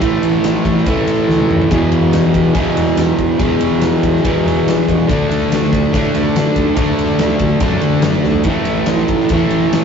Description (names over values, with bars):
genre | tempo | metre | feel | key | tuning
blues rock power trio and southern rock | 142 BPM | 4/4 | straight | unclear | A4 = 441 Hz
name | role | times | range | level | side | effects
distorted electric guitar | riff | 0.0-9.8 s | E2 to D4 | -14 LUFS | equal | distortion
fuzz picked electric bass | bass | 0.0-9.8 s | E1 to D3 | -21 LUFS | left 1 dB | overdrive
huge arena drum kit | drums | 0.0-9.8 s | kick drum, ride cymbal, snare drum, toms | -19 LUFS | left 1 dB | none
room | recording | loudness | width
moderate studio reverb, RT60 0.5 s | rough rehearsal-room recording, tube saturation, nothing above 7.6 kHz | -12 LUFS | side -6 dB against mid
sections
0.0-9.8 A section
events
drum fill 1.3-1.7, 8.3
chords
0.0 A5; 1.7 E5; 5.1 D5; 8.5 A5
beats
| 0.01 0.43 0.86 1.28 | 1.70 2.12 2.55 2.97 | 3.39 3.82 4.24 4.66 | 5.09 5.51 5.93 6.36 | 6.78 7.21 7.63 8.05 | 8.47 8.90 9.32 9.74